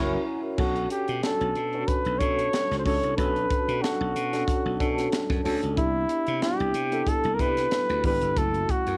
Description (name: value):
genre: polished 1980s jazz-funk pop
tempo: 92 BPM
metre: 4/4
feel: swing 54% on 16ths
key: B minor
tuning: A4 = 440 Hz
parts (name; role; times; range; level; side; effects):
- tine electric piano; accompaniment; 0.0-9.0 s; A3 to B4; -31 LUFS; equal; ensemble chorus, cassette tape
- glassy slap bass; bass; 0.0-9.0 s; F#1 to C3; -33 LUFS; equal; none
- warm flugelhorn; melody; 0.6-9.0 s; E4 to C#5; -29 LUFS; equal; cassette tape
- crisp fusion drum kit; drums; 0.6-9.0 s; crash cymbal, hi-hat, kick drum, snare drum; -32 LUFS; equal; none
room: light reverb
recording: home recording on cassette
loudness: -26 LUFS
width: mono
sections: 0.6-9.0 A section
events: band accent 0.0-0.6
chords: 0.0 F#7; 0.6 Bm9; 5.8 Cmaj9; 8.4 F#m7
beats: | 0.58 1.23 1.88 2.53 | 3.18 3.83 4.48 5.12 | 5.77 6.42 7.07 7.72 | 8.37